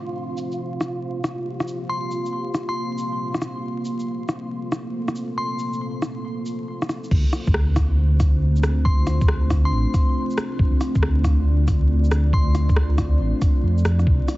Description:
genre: future garage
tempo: 138 BPM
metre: 4/4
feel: swing 66% on 16ths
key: D minor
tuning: A4 = 440 Hz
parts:
  - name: deep dark ambient pad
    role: sustained chords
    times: 0.0-14.4 s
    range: A3 to D5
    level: -28 LUFS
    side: equal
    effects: chorus, built-in reverb, sidechain pumping
  - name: wind-like tuned noise texture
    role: texture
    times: 0.0-7.1, 14.1-14.4 s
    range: F4 to C5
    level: -33 LUFS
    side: right 1 dB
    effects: built-in reverb
  - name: garage drum kit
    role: drums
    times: 0.4-14.4 s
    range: crash cymbal, hi-hat, rim click, shaker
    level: -27 LUFS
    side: equal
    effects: low-pass filter on perc, studio reverb, low-pass filter on snare, low-pass filter on cymbals, low-pass filter on hats
  - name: glassy synth bell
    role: melody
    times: 1.9-5.6, 8.8-12.6 s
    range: C6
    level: -31 LUFS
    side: left 1 dB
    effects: chorus, tape echo
  - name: dark detuned saw bass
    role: bass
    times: 7.1-14.2 s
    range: A1 to F2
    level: -19 LUFS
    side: equal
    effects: sidechain pumping
  - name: electronic kick drum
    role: drums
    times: 7.1-14.2 s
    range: none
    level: -20 LUFS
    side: equal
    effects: studio reverb
room: little or no reverb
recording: heavily compressed radio sound, multiband compression, vinyl crackle, nothing above 7.8 kHz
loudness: -19 LUFS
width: side -18 dB against mid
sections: 0.0-7.1 A section; 7.1-14.4 B section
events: filter sweep on ambient pad 0.0-7.1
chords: 0.2 C7sus4; 7.1 Dm7

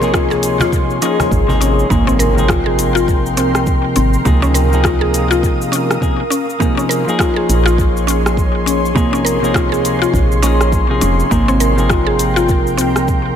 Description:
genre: organic downtempo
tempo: 102 BPM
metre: 4/4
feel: swing 60% on 16ths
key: Bb dorian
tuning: A4 = 440 Hz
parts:
  - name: clean electric guitar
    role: accompaniment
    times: 0.0-13.4 s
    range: C3 to Ab4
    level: -18 LUFS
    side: left 2 dB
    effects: sidechain pumping, ping-pong delay
  - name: ethereal airy pad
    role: sustained chords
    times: 0.0-13.4 s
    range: Ab4 to Eb6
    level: -20 LUFS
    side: left 1 dB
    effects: ensemble chorus, built-in reverb, sidechain pumping
  - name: mallet-like synth pluck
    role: arpeggios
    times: 0.0-13.4 s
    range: Bb3 to Bb4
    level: -18 LUFS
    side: left 1 dB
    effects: chorus, ping-pong delay
  - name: woody FM bass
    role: bass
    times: 0.0-13.3 s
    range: F1 to Db2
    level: -18 LUFS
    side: right 1 dB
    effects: sidechain pumping
  - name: afro-pop drum kit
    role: drums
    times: 0.0-13.2 s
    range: cabasa, hi-hat, rim click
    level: -22 LUFS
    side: equal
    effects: none
  - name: cajon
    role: percussion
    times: 0.0-1.8 s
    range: none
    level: -25 LUFS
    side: equal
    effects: none
  - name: wind-like tuned noise texture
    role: texture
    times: 0.0-1.9 s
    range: Eb5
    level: -33 LUFS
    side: right 4 dB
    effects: none
  - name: electronic kick drum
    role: drums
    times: 0.1-13.2 s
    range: none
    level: -18 LUFS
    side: right 1 dB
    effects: none
  - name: impact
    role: sound effects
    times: 1.9-4.3 s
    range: none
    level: -26 LUFS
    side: right 2 dB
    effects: none
room: light reverb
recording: none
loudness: -12 LUFS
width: side -9 dB against mid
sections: 0.0-1.9 A section; 1.9-13.4 B section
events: impact 1.9-4.3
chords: 0.0 Bbm9; 1.9 Abmaj9; 4.3 Db69; 6.6 Bbm9; 11.3 Abmaj9

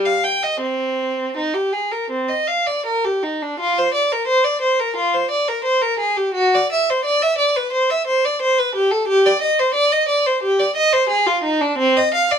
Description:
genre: classical, baroque-style suite movement for unaccompanied violin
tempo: 78-91 BPM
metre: 4/4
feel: rubato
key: C minor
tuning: A4 = 440 Hz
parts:
  - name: rich violin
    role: solo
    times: 0.0-12.4 s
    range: C4 to G5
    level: -16 LUFS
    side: equal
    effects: none
room: little or no reverb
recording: close, detailed microphones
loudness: -16 LUFS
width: side -7 dB against mid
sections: 0.0-3.6 A section; 3.6-12.4 A section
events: none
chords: none

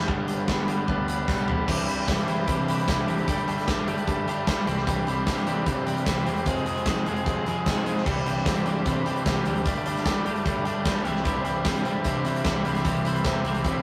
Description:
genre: indie rock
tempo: 150 BPM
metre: 4/4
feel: straight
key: C major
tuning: A4 = 443 Hz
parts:
  - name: crunchy overdriven guitar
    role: riff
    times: 0.0-13.8 s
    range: F2 to Ab4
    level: -30 LUFS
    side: equal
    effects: none
  - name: twelve-string electric guitar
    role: riff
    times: 0.0-13.8 s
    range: F2 to Ab4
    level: -32 LUFS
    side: equal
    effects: none
  - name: growling picked electric bass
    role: bass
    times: 0.0-13.8 s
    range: G1 to C3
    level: -36 LUFS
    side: equal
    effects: overdrive
  - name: big rock drum kit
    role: drums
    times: 0.1-13.7 s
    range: crash cymbal, hi-hat, kick drum, snare drum, toms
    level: -30 LUFS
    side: equal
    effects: none
  - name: tambourine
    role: percussion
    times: 0.5-13.7 s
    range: none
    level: barely audible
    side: none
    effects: none
  - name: tonewheel organ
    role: sustained chords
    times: 1.7-13.8 s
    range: G4 to E6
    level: -43 LUFS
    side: equal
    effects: none
room: moderate studio reverb, RT60 0.6 s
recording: rough rehearsal-room recording, tube saturation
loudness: -25 LUFS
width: mono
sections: 0.0-1.7 A section; 1.7-13.8 B section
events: drum fill 1.3-1.7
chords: 0.1 G; 1.7 Cadd9; 3.3 Gsus2; 4.7 Cadd9; 6.5 Fm; 8.1 Cadd9; 9.7 Gsus2; 11.1 Cadd9; 12.9 C

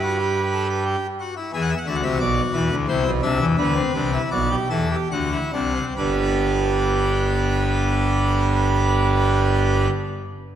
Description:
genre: classical, baroque-style 3-part fugue for pipe organ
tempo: 68-90 BPM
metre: 3/4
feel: straight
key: G major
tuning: A4 = 435 Hz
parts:
  - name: pipe organ, full organ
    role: solo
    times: 0.0-9.9 s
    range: G1 to F#5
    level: -19 LUFS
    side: equal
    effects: none
room: wet concert hall reverb, RT60 2.0 s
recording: none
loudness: -19 LUFS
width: side -10 dB against mid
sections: 0.0-1.5 A section; 1.5-6.0 B section; 6.0-10.6 C section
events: slowing down 0.5-6.0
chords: 0.0 G; 1.5 E7; 2.9 Cmaj9/B; 3.6 G; 5.1 D7; 6.0 G

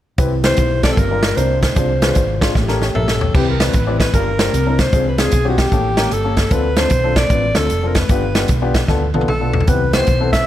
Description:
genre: uptempo gospel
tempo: 152 BPM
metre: 4/4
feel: swing 65% on 8ths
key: C major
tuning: A4 = 440 Hz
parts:
  - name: warm upright piano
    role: accompaniment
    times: 0.2-10.4 s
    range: G2 to G5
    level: -22 LUFS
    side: left 4 dB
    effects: none
  - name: dark French horn section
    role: sustained chords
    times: 0.2-3.3 s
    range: G3 to G4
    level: -29 LUFS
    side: right 1 dB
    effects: none
  - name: hollow-body short-scale fingered electric bass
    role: bass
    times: 0.2-10.4 s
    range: F1 to D2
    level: -20 LUFS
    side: equal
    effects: none
  - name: swinging big-band drum kit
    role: drums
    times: 0.2-10.4 s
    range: crash cymbal, hi-hat, kick drum, snare drum, toms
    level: -17 LUFS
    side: equal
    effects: none
  - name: breathy alto saxophone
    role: melody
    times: 0.5-10.5 s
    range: F#4 to E5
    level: -20 LUFS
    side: left 1 dB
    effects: slapback echo
room: light reverb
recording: none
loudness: -13 LUFS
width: side -12 dB against mid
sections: 0.2-3.3 A section; 3.3-10.5 B section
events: drum fill 2.6-3.3, 8.9-9.7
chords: 0.2 Cmaj7; 1.0 Gm7; 1.4 C9; 1.8 Fm6/C; 2.6 A7b9; 3.3 Cmaj7; 4.1 Gm7; 4.5 C9; 4.9 Fm6/C; 5.7 A7b9; 6.5 Dm7; 8.1 G7; 9.7 Cmaj7

